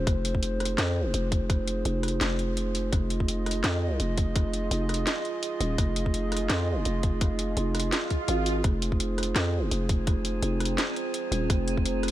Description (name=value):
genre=half-time drum and bass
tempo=168 BPM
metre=4/4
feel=swing 55% on 16ths, half-time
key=F minor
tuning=A4 = 441 Hz
part: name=dark analog pad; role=sustained chords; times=0.0-12.1 s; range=F4 to Eb5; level=-32 LUFS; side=right 3 dB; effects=chorus, sidechain pumping
part: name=growling 808-style bass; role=bass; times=0.0-12.1 s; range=Eb1 to F2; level=-28 LUFS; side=equal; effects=none
part: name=drum and bass drum kit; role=drums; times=0.1-12.1 s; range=hi-hat, rim click, snare drum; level=-32 LUFS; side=equal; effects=none
part: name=electronic kick drum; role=drums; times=0.1-11.8 s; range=none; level=-26 LUFS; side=equal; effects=none
part: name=swell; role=sound effects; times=8.0-8.6 s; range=none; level=-35 LUFS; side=right 2 dB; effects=none
part: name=metallic inharmonic drone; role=texture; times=9.6-12.1 s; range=C4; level=-36 LUFS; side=equal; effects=chorus, built-in reverb
room=little or no reverb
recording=none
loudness=-25 LUFS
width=side -14 dB against mid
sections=0.0-12.1 A section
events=swell 8.0-8.6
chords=0.0 Fm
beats=| 0.07 0.43 0.79 1.14 | 1.50 1.86 2.21 2.57 | 2.93 3.29 3.64 4.00 | 4.36 4.71 5.07 5.43 | 5.79 6.14 6.50 6.86 | 7.21 7.57 7.93 8.29 | 8.64 9.00 9.36 9.71 | 10.07 10.43 10.79 11.14 | 11.50 11.86